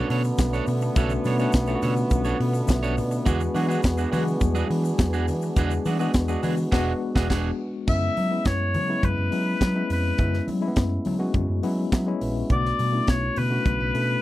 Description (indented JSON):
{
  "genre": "disco",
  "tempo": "104 BPM",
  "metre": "4/4",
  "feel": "straight",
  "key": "unclear",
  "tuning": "A4 = 440 Hz",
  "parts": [
    { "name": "electric guitar at the edge of break-up", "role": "accompaniment", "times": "0.0-7.5 s", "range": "D4 to C#5", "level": "-31 LUFS", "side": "right 7 dB", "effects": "none" },
    { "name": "mellow tine electric piano", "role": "accompaniment", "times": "0.0-14.2 s", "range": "F#3 to F#5", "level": "-28 LUFS", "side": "left 3 dB", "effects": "medium stereo tremolo" },
    { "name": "mellow French horn section", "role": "sustained chords", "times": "0.0-7.8 s", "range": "D3 to G#4", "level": "-30 LUFS", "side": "right 2 dB", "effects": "none" },
    { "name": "picked electric bass", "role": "bass", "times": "0.1-14.2 s", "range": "E1 to F#3", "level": "-26 LUFS", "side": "equal", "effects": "none" },
    { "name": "tight funk drum kit", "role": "drums", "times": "0.1-14.1 s", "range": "crash cymbal, hi-hat, kick drum, snare drum", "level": "-22 LUFS", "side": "equal", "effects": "none" },
    { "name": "egg shaker", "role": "percussion", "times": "0.2-6.7 s", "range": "none", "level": "-45 LUFS", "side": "left 12 dB", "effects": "none" },
    { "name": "congas", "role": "percussion", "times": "0.4-13.9 s", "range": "none", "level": "-35 LUFS", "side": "left 3 dB", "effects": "none" },
    { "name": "clear oboe", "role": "melody", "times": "7.9-14.2 s", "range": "B4 to E5", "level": "-26 LUFS", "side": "left 2 dB", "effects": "none" }
  ],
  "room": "little or no reverb",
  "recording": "dry, close 1970s-style studio recording",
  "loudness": "-21 LUFS",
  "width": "side -15 dB against mid",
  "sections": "0.0-7.9 A section; 7.9-14.2 B section",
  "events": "tine electric piano fill 2.4-3.3, 11.3-12.5; band accent 6.7-7.9",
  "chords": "0.0 Bm9; 3.3 E9; 7.9 F#9sus4; 12.5 Bm9",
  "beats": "0.39 | 0.96 1.54 2.11 2.69 | 3.27 3.84 4.42 5.00 | 5.57 6.15 6.72 7.30 | 7.88 8.46 9.03 9.61 | 10.19 10.77 11.35 11.93 | 12.50 13.08 13.66"
}